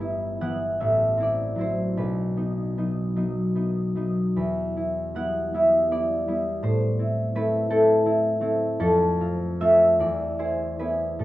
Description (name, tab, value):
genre	classical, solo harp piece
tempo	48-57 BPM (dotted quarters)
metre	6/8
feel	rubato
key	E minor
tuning	A4 = 439 Hz
part	concert harp	solo	0.0-11.2 s	G1 to F#5	-21 LUFS	equal	none
room	light reverb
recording	dark, warm production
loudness	-21 LUFS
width	side -16 dB against mid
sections	0.0-11.2 A section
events	none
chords	0.0 Em/G; 0.8 F#m7b5/A; 2.0 B; 4.4 Em; 6.6 Am; 8.8 F; 10.0 E7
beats	0.81 | 1.97 3.15 | 4.35 5.55 | 6.64 7.72 | 8.81 10.00 | 11.20